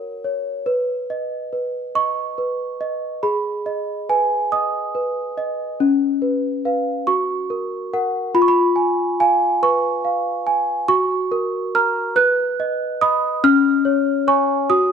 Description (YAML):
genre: classical, lullaby for celesta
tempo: 47 BPM (dotted quarters)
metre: 6/8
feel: straight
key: unclear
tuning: A4 = 440 Hz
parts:
  - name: celesta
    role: solo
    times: 0.0-14.9 s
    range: C#4 to F#6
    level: -17 LUFS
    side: equal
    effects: none
room: moderate recital hall reverb, RT60 1.8 s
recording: dark, warm production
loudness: -17 LUFS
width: side -7 dB against mid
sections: 0.7-14.9 A section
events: none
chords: 0.0 F#; 0.7 B; 3.2 G#m; 5.8 C#7; 7.1 F#; 8.3 C#7/E#; 10.9 F#; 12.2 B; 13.4 C#